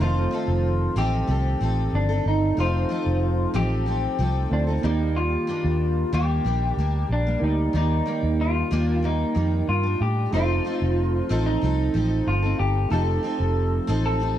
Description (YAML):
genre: indie pop, bedroom pop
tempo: 93 BPM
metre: 4/4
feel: straight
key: unclear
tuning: A4 = 442 Hz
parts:
  - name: electric guitar through a small old amp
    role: melody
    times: 0.0-14.4 s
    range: D4 to A4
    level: -26 LUFS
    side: equal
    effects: lush chorus, plate reverb, analog delay
  - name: picked steel-string acoustic guitar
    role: accompaniment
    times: 0.0-14.4 s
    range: Eb3 to A4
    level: -29 LUFS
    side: left 2 dB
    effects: analog chorus, warbly pitch drift, plate reverb
  - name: warbly lo-fi synth keys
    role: accompaniment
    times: 0.0-14.4 s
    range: Eb3 to D5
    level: -32 LUFS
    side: right 3 dB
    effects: chorus, plate reverb
  - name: vintage muted fingered electric bass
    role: bass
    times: 0.0-14.4 s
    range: F1 to A2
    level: -23 LUFS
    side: equal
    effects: none
room: moderate small room reverb, RT60 0.6 s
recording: dark, warm production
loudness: -21 LUFS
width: side -11 dB against mid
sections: 0.0-14.4 A section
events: none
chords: 0.0 F7; 4.8 Ebmaj7; 10.3 F7